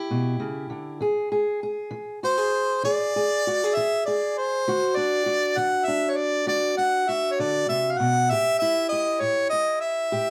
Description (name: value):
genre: acoustic country blues, solo or duo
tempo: 66 BPM (dotted quarters)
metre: 12/8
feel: straight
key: unclear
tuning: A4 = 441 Hz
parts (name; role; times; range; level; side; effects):
- fingerpicked steel-string acoustic guitar; accompaniment; 0.0-10.3 s; A2 to G#4; -29 LUFS; equal; none
- clear harmonica; melody; 2.2-10.3 s; C5 to F#5; -25 LUFS; equal; none
room: moderate studio reverb, RT60 0.7 s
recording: band playing live in one room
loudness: -24 LUFS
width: mono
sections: 0.0-10.3 A section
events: none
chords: 0.0 A7 (rootless); 1.0 E7; 4.7 D; 8.3 A7(no3)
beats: 0.10 | 1.02 1.93 2.84 3.75 | 4.66 5.57 6.48 7.38 | 8.29 9.20 10.10